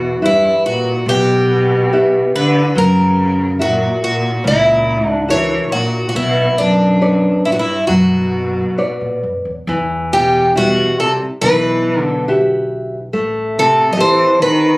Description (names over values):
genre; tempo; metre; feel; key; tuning
fado-style ballad; 70 BPM; 4/4; rubato; B harmonic minor, E harmonic minor from 9.7 s; A4 = 440 Hz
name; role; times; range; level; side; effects
picked twelve-string acoustic guitar; melody; 0.0-14.8 s; D4 to D#5; -15 LUFS; equal; none
rich cello; second line; 0.0-14.8 s; F#2 to F#3; -18 LUFS; equal; none
nylon-string guitar; accompaniment; 0.0-14.7 s; B2 to D5; -18 LUFS; equal; none
upright bass; bass; 0.0-14.2 s; A1 to A#2; -24 LUFS; equal; none
room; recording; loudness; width
light reverb; recorded on a phone in the room, studio reverb, compression; -12 LUFS; side -23 dB against mid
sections
0.0-9.7 A section; 9.7-14.8 B section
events
none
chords
0.0 Em; 2.8 F#7; 6.2 Bmadd9; 9.7 Emadd9; 13.1 Am7